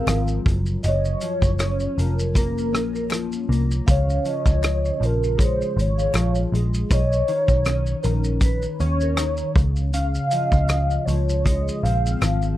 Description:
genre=indie pop, bedroom pop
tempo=79 BPM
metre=4/4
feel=swing 55% on 16ths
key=Db major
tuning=A4 = 440 Hz
part: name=warm velvety synth lead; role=melody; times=0.0-12.6 s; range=Bb4 to F5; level=-26 LUFS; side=equal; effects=wide subtle chorus, slapback echo
part: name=vibraphone with medium mallets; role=second line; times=0.0-12.4 s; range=Bb4 to F5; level=-30 LUFS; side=right 3 dB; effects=lush chorus, slapback echo
part: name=mellow electric guitar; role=accompaniment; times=0.0-12.6 s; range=Gb2 to Db4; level=-28 LUFS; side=left 3 dB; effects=analog chorus, warbly pitch drift
part: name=vintage muted picked electric bass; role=bass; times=0.1-12.6 s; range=F1 to Eb2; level=-22 LUFS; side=equal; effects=none
part: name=loose indie drum kit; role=drums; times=0.1-12.6 s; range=hi-hat, kick drum, rim click, shaker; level=-22 LUFS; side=equal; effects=none
part: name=group handclap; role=percussion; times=0.1-12.4 s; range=none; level=-34 LUFS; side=left 7 dB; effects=none
room=little or no reverb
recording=dry, close 1970s-style studio recording, lossy compression artefacts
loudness=-19 LUFS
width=side -14 dB against mid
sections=0.0-12.6 A section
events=none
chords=0.5 Gbmaj7; 3.9 Db; 6.9 Cbmaj9; 9.6 Dbmaj7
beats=0.07 | 0.83 1.59 2.35 3.11 | 3.87 4.63 5.39 6.14 | 6.91 7.66 8.42 9.18 | 9.94 10.70 11.46 12.22

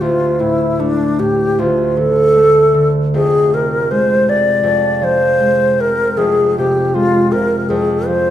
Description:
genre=classical, impressionist duo for alto flute and harp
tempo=74-81 BPM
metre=4/4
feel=rubato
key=unclear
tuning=A4 = 440 Hz
part: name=alto flute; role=melody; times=0.0-8.3 s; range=D4 to D5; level=-13 LUFS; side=left 1 dB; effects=none
part: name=concert harp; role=accompaniment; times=0.0-8.3 s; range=F1 to A3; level=-17 LUFS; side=right 1 dB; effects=none
room=wet recital hall reverb, RT60 1.6 s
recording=minimal, uncompressed stereo recording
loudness=-11 LUFS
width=side -11 dB against mid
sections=0.0-8.3 A section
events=none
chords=0.0 Dm; 3.1 Fm; 7.7 Bbsus2/F (rootless)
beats=| 0.01 0.80 1.60 2.38 | 3.15 3.91 4.65 5.41 | 6.18 6.94 7.69

